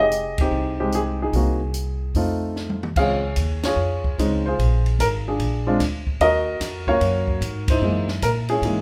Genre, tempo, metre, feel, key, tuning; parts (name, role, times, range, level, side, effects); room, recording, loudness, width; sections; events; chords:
jazz piano trio; 148 BPM; 4/4; swing 66% on 8ths; A4 = 440 Hz
warm baby grand piano; melody; 0.0-8.8 s; Fb3 to F5; -24 LUFS; equal
upright bass; bass; 0.0-8.8 s; F1 to Bb2; -26 LUFS; equal
compact cocktail drum kit; drums; 0.1-8.8 s; crash cymbal, hi-hat, kick drum, ride cymbal, snare drum, toms; -30 LUFS; equal
light reverb; band playing live in one room; -22 LUFS; mono
0.0-3.0 A section; 3.0-8.8 B section
band accent 0.3, 3.6, 7.6; drum fill 2.6-3.0
0.0 Fm9; 1.3 Cm7b5; 2.2 F7; 3.0 Dbmaj9; 4.6 Bb7; 6.2 Ebm7; 7.8 Gb13